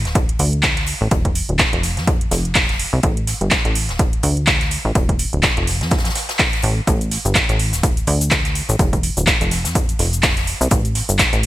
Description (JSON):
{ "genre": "piano house", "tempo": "125 BPM", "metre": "4/4", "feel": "swing 57% on 16ths", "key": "unclear", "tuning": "A4 = 440 Hz", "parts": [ { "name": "plucky analog bass", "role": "bass", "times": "0.0-11.5 s", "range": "D1 to F2", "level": "-20 LUFS", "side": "equal", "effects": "tube saturation, sidechain pumping" }, { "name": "house drum kit", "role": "drums", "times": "0.1-11.5 s", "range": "handclaps, hi-hat, shaker", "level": "-19 LUFS", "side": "right 1 dB", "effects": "none" }, { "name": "swinging big-band drum kit", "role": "drums", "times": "0.1-11.5 s", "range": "hi-hat, snare drum", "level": "-30 LUFS", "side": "left 2 dB", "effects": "sidechain pumping on hats, high-pass filter on hats, high-pass filter on snare, high-pass filter on room" }, { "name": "electronic kick drum", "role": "drums", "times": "0.2-11.3 s", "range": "none", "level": "-19 LUFS", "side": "equal", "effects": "none" } ], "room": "light reverb, small room ambience", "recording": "bright 1980s-style digital production", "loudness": "-15 LUFS", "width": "side -15 dB against mid", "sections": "0.0-11.5 A section", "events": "none", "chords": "none" }